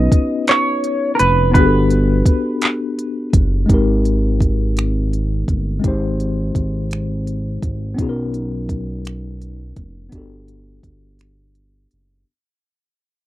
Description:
slow six-eight R&B; 56 BPM (dotted quarters); 6/8; straight; A4 = 442 Hz
semi-hollow electric guitar; melody; 0.0-3.3 s; Bb4 to D#5; -18 LUFS; right 2 dB; lush chorus
mellow tine electric piano; accompaniment; 0.0-12.3 s; Ab3 to C5; -21 LUFS; left 3 dB; medium stereo tremolo
smooth gliding synth bass; bass; 0.0-12.2 s; F1 to B1; -19 LUFS; equal
smooth R&B drum kit; drums; 0.1-12.1 s; finger snaps, handclaps, hi-hat, kick drum; -16 LUFS; equal
little or no reverb; dry, close 1970s-style studio recording; -15 LUFS; side -15 dB against mid
0.0-3.7 A section; 3.7-12.3 B section
fade-out 3.7-12.3
0.0 Badd9; 1.6 Gmaj9; 3.7 Abmaj9; 8.0 Bmaj9; 10.1 Gmaj9

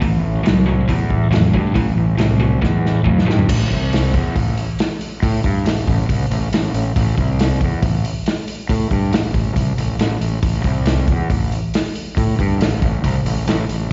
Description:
blues rock power trio and southern rock; 138 BPM; 4/4; straight; A minor; A4 = 442 Hz
distorted electric guitar; riff; 0.0-3.5 s; A2 to F#3; -20 LUFS; equal; distortion, slapback echo
fuzz fingered electric bass; bass; 0.0-13.9 s; A1 to A2; -20 LUFS; equal; overdrive
vintage drum kit; drums; 0.0-13.8 s; crash cymbal, hi-hat, kick drum, snare drum, toms; -22 LUFS; equal
light reverb; live gig heard through the venue's PA, recital hall reverb, nothing above 7.6 kHz; -18 LUFS; mono
0.0-3.5 A section; 3.5-13.9 B section
drum fill 2.6-3.5
0.0 Am

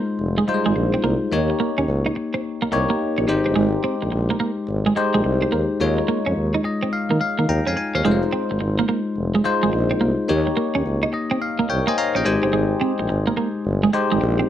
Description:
R&B; 107 BPM; 4/4; swing 65% on 16ths; F minor; A4 = 440 Hz
bell-like tine electric piano; accompaniment; 0.0-14.5 s; G3 to Bb5; -22 LUFS; left 3 dB; phaser
twelve-string electric guitar; riff; 0.0-14.5 s; Ab3 to Eb4; -22 LUFS; right 4 dB; wide subtle chorus
warm tuba; bass; 0.2-14.4 s; F1 to Eb3; -22 LUFS; equal
light reverb; dark, warm production; -18 LUFS; side -11 dB against mid
0.0-8.0 A section; 8.0-14.5 B section
tine electric piano fill 6.4-8.0, 10.8-12.5
0.0 Fm7; 1.3 Eb7; 3.3 Abmaj7; 5.8 Eb9sus4; 8.0 Fm7; 10.3 Eb7; 12.2 Abmaj7

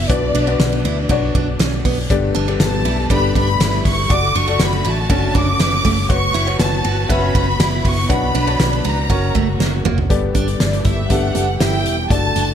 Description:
piano-driven pop; 120 BPM; 4/4; straight; A4 = 441 Hz
rich studio violin section; melody; 0.0-12.5 s; D5 to D6; -21 LUFS; equal
warm grand piano; accompaniment; 0.0-12.5 s; G2 to A5; -22 LUFS; left 5 dB; lush chorus
warm studio string section; sustained chords; 0.0-12.5 s; B2 to G4; -28 LUFS; equal
vintage muted fingered electric bass; bass; 0.0-12.5 s; E1 to D2; -20 LUFS; equal
loose indie drum kit; drums; 0.1-12.5 s; hi-hat, kick drum, ride cymbal, snare drum, toms; -19 LUFS; equal; gated reverb
picked steel-string acoustic guitar; riff; 0.3-12.5 s; A3 to F#4; -25 LUFS; right 8 dB; wide subtle chorus
light reverb, small room ambience; bright 1980s-style digital production; -14 LUFS; side -9 dB against mid
0.0-10.1 A section; 10.1-12.5 B section
drum fill 9.6-10.1
0.1 Bmadd9; 2.1 Gadd9; 4.1 D/F#; 6.1 F#sus4; 8.1 Bmadd9; 9.1 F#; 10.1 Gadd9

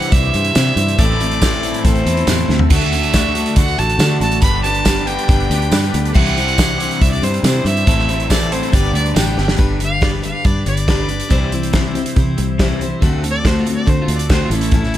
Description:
folk rock and heartland rock; 140 BPM; 4/4; straight; G major; A4 = 441 Hz
rich fiddle; melody; 0.0-15.0 s; E4 to B5; -21 LUFS; right 1 dB
picked steel-string acoustic guitar; accompaniment; 0.0-15.0 s; A2 to C5; -23 LUFS; left 4 dB
bright tonewheel organ; sustained chords; 0.0-15.0 s; A3 to E5; -32 LUFS; equal
overdriven electric guitar; riff; 0.0-15.0 s; G2 to A4; -23 LUFS; equal; phaser
loose indie drum kit; drums; 0.0-15.0 s; crash cymbal, hi-hat, kick drum, snare drum, toms; -17 LUFS; equal
fingered electric bass; bass; 0.1-15.0 s; G1 to D3; -19 LUFS; equal
tambourine; percussion; 0.6-9.3 s; -28 LUFS; right 13 dB
little or no reverb; -13 LUFS; side -12 dB against mid
0.0-9.6 A section; 9.6-15.0 B section
drum fill 2.5, 9.4; fiddle solo 9.6-15.0
0.0 Cadd9; 1.0 Am; 2.7 D; 4.4 G; 6.2 Cadd9; 7.9 Am; 8.7 G; 11.3 C; 13.0 D7

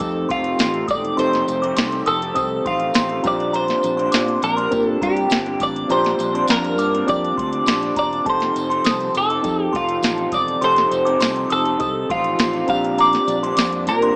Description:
indie pop, bedroom pop; 102 BPM; 4/4; straight; Bb major; A4 = 440 Hz
twelve-string electric guitar; melody; 0.0-14.2 s; F4 to F5; -23 LUFS; equal; analog chorus
electric guitar through a small old amp; accompaniment; 0.0-14.2 s; F2 to A4; -30 LUFS; equal; lush chorus, warbly pitch drift
reed electric piano; accompaniment; 0.0-14.2 s; C4 to C5; -28 LUFS; equal
hollow soft pad; sustained chords; 0.0-14.2 s; F3 to A5; -34 LUFS; equal
fingered electric bass; bass; 0.0-14.1 s; E1 to Bb2; -32 LUFS; equal
soft vintage rhythm box; drums; 0.0-14.2 s; hi-hat, kick drum, snare drum; -24 LUFS; equal
tambourine; percussion; 0.0-14.0 s; -40 LUFS; equal
glassy synth bell; second line; 0.3-14.2 s; A5 to Eb6; -29 LUFS; equal; subtle chorus, tape echo
light reverb, digital ambience; cassette tape, small speaker sound; -19 LUFS; mono
0.0-14.2 A section
0.0 F7; 3.2 Bb69; 8.3 F7; 12.7 Bb69

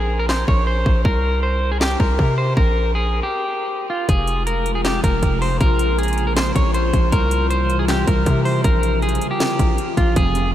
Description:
hip hop, trap; 158 BPM; 4/4; half-time; A4 = 439 Hz
electric guitar at the edge of break-up; melody; 0.0-10.5 s; F4 to Db5; -22 LUFS; equal; low-pass filter, tape echo
distorted 808-style bass; bass; 0.0-10.5 s; F1 to C3; -20 LUFS; equal; distortion
trap drum kit; drums; 0.3-10.4 s; handclaps, hi-hat, kick drum, snare drum; -21 LUFS; equal; overdrive
glassy FM pad; sustained chords; 4.4-10.1 s; C3 to F4; -25 LUFS; left 1 dB; ensemble chorus, built-in reverb
bell-like tine electric piano; accompaniment; 10.2-10.5 s; F2 to C3; -27 LUFS; right 4 dB; wide subtle chorus, low-pass filter
moderate huge ambient reverb, RT60 7.4 s; dreamy mix soaked in reverb; -16 LUFS; side -12 dB against mid
0.0-10.2 A section
break 0.0-4.1
0.0 Bbsus2; 1.0 Abadd9/C (rootless); 2.6 Gm/Bb; 4.1 Fm; 5.6 Bbm; 7.1 C; 8.6 Bbm

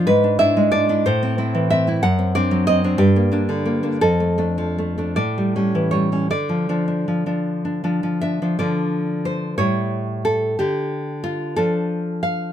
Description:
romantic piece for solo classical guitar; 50-64 BPM (dotted quarters); 6/8; rubato; D minor; A4 = 440 Hz
nylon-string guitar; solo; 0.0-12.5 s; F2 to F#5; -18 LUFS; equal
light reverb; minimal, uncompressed stereo recording; -18 LUFS; side -10 dB against mid
0.0-8.6 A section; 8.6-12.5 B section
0.1 E7/G#; 1.1 Am; 2.0 D7/F#; 3.0 Gm; 4.0 Dm/F; 5.2 A7; 6.3 Dm; 9.6 A7; 10.6 Dm

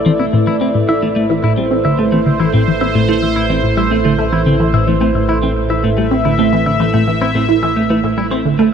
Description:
ambient, sequencer-driven space music; 109 BPM; 4/4; straight; A minor; A4 = 440 Hz
sweeping resonant pad; sustained chords; 0.0-8.7 s; A3 to E5; -16 LUFS; right 1 dB; chorus
fat analog bass; bass; 0.0-8.7 s; A1; -22 LUFS; equal; tube saturation
clean electric guitar; arpeggios; 0.1-8.7 s; A3 to E5; -20 LUFS; left 2 dB; auto-pan, tape echo
resonant blip pluck; riff; 0.1-8.7 s; A2 to E4; -15 LUFS; right 1 dB; phaser, lush chorus, tape echo
moderate huge ambient reverb, RT60 8.0 s; -12 LUFS; side -7 dB against mid
0.0-8.7 A section
filter sweep on synth arpeggio sound 0.0-8.7
0.0 Am

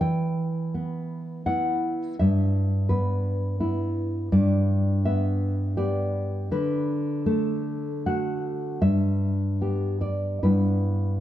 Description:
romantic piece for solo classical guitar; 67-87 BPM; 3/4; rubato; A4 = 439 Hz
nylon-string guitar; solo; 0.0-11.2 s; G2 to G5; -23 LUFS; equal
light reverb; dark, warm production; -23 LUFS; side -12 dB against mid
0.0-11.2 A section
0.0 Em; 2.2 Em/G; 4.3 G; 6.5 D; 8.8 G; 10.4 Em/G

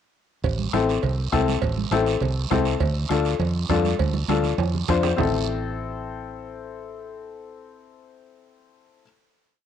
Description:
latin, cumbia; 202 BPM; 4/4; straight; A minor; A4 = 439 Hz
fingered electric bass; bass; 0.4-9.0 s; A1 to F2; -25 LUFS; right 1 dB
bombo; percussion; 0.4-5.3 s; -30 LUFS; right 2 dB
congas; percussion; 0.4-5.3 s; -31 LUFS; right 11 dB
cowbell and timbales; percussion; 0.4-5.3 s; -32 LUFS; right 10 dB
guiro; percussion; 0.4-5.3 s; -34 LUFS; right 12 dB
dark upright piano; accompaniment; 0.7-9.0 s; C4 to C5; -25 LUFS; left 7 dB; cassette tape
light reverb, small room ambience; home recording on cassette; -21 LUFS; side -9 dB against mid
0.4-5.2 groove; 5.2-7.6 final chord
drum fill 4.0-5.2
0.4 Am; 2.8 Dm; 5.2 Am

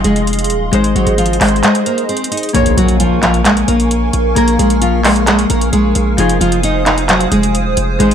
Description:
hip hop, trap; 132 BPM; 4/4; half-time; Bb minor; A4 = 440 Hz
nylon-string guitar; melody; 0.0-8.1 s; F3 to Eb5; -15 LUFS; right 1 dB
Celtic harp; accompaniment; 0.0-8.1 s; F3 to Db5; -19 LUFS; left 7 dB
hollow soft pad; sustained chords; 0.0-8.1 s; Ab4 to Eb6; -20 LUFS; right 2 dB; ensemble chorus
hard-hitting 808-style bass; bass; 0.0-8.1 s; Eb1 to Bb1; -16 LUFS; equal
trap drum kit; drums; 0.0-8.1 s; handclaps, hi-hat; -16 LUFS; equal
impact; sound effects; 2.5-4.4 s; -22 LUFS; equal
light reverb; -10 LUFS; side -8 dB against mid
0.0-2.5 A section; 2.5-8.1 B section
break 1.6-2.5; impact 2.5-4.4
0.0 Fm7; 0.7 Ab; 2.5 Bbm7; 6.2 Fm7

